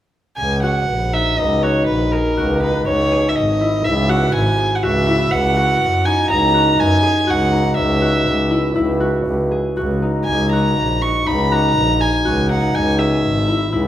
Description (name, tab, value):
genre	contemporary instrumental, chamber music in an uneven meter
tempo	122 BPM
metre	5/4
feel	straight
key	unclear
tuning	A4 = 440 Hz
part	dark violin	melody	0.4-13.9 s	A#4 to C#6	-19 LUFS	right 1 dB	none
part	rich double bass	bass	0.4-13.9 s	G#1 to F#2	-19 LUFS	equal	none
part	concert harp	arpeggios	0.6-13.9 s	D#4 to G#4	-19 LUFS	left 1 dB	none
room	wet recital hall reverb, RT60 1.4 s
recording	none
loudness	-14 LUFS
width	side -11 dB against mid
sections	0.4-13.9 A section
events	none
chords	0.4 D#m7; 2.9 C#m; 5.3 C#sus24; 10.3 D#m7; 12.8 C#m